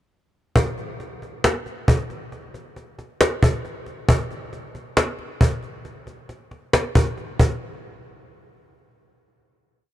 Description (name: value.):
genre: hip hop.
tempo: 136 BPM.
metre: 4/4.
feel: half-time.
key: none.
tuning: none.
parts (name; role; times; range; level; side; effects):
cajon; drums; 0.6-7.5 s; none; -20 LUFS; equal; none.
room: light reverb, small room ambience.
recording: dark, warm production.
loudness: -20 LUFS.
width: side -14 dB against mid.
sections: 0.6-7.6 verse; 7.6-9.9 final hit.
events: none.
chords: none.